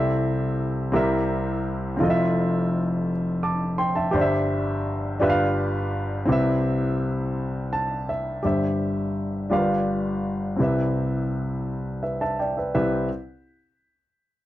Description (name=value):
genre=gospel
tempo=56 BPM (dotted quarters)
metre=6/8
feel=straight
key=C major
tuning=A4 = 440 Hz
part: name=warm grand piano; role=solo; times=0.0-13.1 s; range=F1 to D6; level=-22 LUFS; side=equal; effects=none
room=light reverb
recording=dry, close 1970s-style studio recording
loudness=-22 LUFS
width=side -14 dB against mid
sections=0.0-8.4 A section; 8.4-12.7 B section; 12.7-14.5 C section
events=grand piano fill 7.4-8.4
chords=0.0 C6; 0.9 C7; 2.0 Fmaj7; 4.1 C/G; 5.2 G7; 6.3 Cmaj7; 8.4 C/G; 9.5 G7; 10.6 Cmaj7